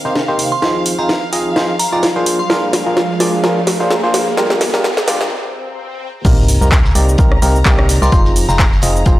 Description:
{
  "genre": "piano house",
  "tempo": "128 BPM",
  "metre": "4/4",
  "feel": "swing 55% on 16ths",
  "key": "C minor",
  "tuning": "A4 = 441 Hz",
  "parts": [
    { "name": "warm chamber violin section", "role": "sustained chords", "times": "0.0-9.2 s", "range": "F5 to Bb5", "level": "-26 LUFS", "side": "equal", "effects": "sidechain pumping" },
    { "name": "riser, swell and sub drop", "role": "sound effects", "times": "1.2-8.1 s", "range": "none", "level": "-26 LUFS", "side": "equal", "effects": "none" },
    { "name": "deep dark ambient pad", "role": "texture", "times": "0.0-5.3 s", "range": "F3 to Bb5", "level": "-25 LUFS", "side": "right 2 dB", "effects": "chorus, built-in reverb, sidechain pumping" },
    { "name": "barking FM electric piano", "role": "riff", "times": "0.1-9.2 s", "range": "G2 to Eb5", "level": "-18 LUFS", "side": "equal", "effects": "chorus, sidechain pumping, low-pass filter, tape echo" },
    { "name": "house drum kit", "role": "drums", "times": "0.2-9.2 s", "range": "crash cymbal, handclaps, hi-hat, rim click, shaker, snare drum", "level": "-18 LUFS", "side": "equal", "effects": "overdrive" },
    { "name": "glassy synth bell", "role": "melody", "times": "0.5-2.9, 8.0-8.6 s", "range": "Bb5 to C6", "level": "-22 LUFS", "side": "equal", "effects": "chorus, phaser, tape echo" },
    { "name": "organ-like FM bass", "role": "bass", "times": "6.2-9.2 s", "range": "F1 to C2", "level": "-15 LUFS", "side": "equal", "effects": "sidechain pumping" },
    { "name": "electronic kick drum", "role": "drums", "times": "6.2-9.2 s", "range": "none", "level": "-13 LUFS", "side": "equal", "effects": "none" },
    { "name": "warm soul drum kit", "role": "drums", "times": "6.2-9.2 s", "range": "hi-hat, snare drum", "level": "-30 LUFS", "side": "equal", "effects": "none" }
  ],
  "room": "light reverb",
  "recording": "dry, gritty hardware recording, transformer saturation, high-pass filter",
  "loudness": "-11 LUFS",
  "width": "side -16 dB against mid",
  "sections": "0.0-6.2 A section; 6.2-9.2 B section",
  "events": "build-up 0.0-6.2; drum fill 0.0-5.3; riser 1.2-5.3; break 5.3-6.2; swell 5.3-6.2; drop 6.2-9.2; impact 6.2-8.1",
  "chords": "0.0 Cm7; 0.6 Fm7; 2.3 Bb7/F; 4.4 Gm7; 6.2 Cm7; 8.1 Fm7"
}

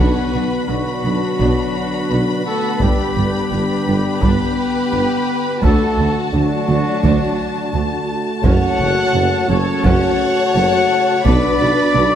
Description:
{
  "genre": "cinematic, epic orchestral film score",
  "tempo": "85 BPM",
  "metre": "4/4",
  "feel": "straight",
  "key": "unclear",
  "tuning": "A4 = 439 Hz",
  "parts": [
    { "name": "rich symphonic violin section", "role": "melody", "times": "0.0-12.2 s", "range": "A5 to B5", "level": "-27 LUFS", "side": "left 4 dB", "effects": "none" },
    { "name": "warm symphonic violin section", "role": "second line", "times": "0.0-12.2 s", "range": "D4 to C#5", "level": "-24 LUFS", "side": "left 3 dB", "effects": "none" },
    { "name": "dark symphonic viola section", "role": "accompaniment", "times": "0.0-12.2 s", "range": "C#4 to B4", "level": "-27 LUFS", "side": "right 2 dB", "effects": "none" },
    { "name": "dark French horn section", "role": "sustained chords", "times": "0.0-12.2 s", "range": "F#3 to F#4", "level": "-22 LUFS", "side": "left 4 dB", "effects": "none" },
    { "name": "mellow trombone section", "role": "sustained chords", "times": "0.0-12.2 s", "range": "C#3 to B3", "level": "-27 LUFS", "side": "right 4 dB", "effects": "none" },
    { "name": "warm trumpet section", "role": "stabs", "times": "0.0-12.2 s", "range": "F#4 to F#5", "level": "-21 LUFS", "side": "equal", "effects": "none" },
    { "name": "mellow tuba", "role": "bass", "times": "0.0-12.1 s", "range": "F#1 to D2", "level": "-23 LUFS", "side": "right 4 dB", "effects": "none" },
    { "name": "rich studio cello section", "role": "bass", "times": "0.0-12.0 s", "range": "D2 to B2", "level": "-23 LUFS", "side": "right 2 dB", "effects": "none" },
    { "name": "warm studio double bass section", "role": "bass", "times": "0.0-12.0 s", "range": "F#1 to D2", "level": "-24 LUFS", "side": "right 3 dB", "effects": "none" },
    { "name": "taiko ensemble", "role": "drums", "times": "1.4-11.9 s", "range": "none", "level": "-20 LUFS", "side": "equal", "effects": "none" }
  ],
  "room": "moderate scoring stage reverb, RT60 2.0 s",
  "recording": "none",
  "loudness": "-14 LUFS",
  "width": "side -9 dB against mid",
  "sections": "0.0-12.2 A section",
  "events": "none",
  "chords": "0.0 Bm; 2.8 G; 5.6 D; 8.4 F#m; 11.3 Bm"
}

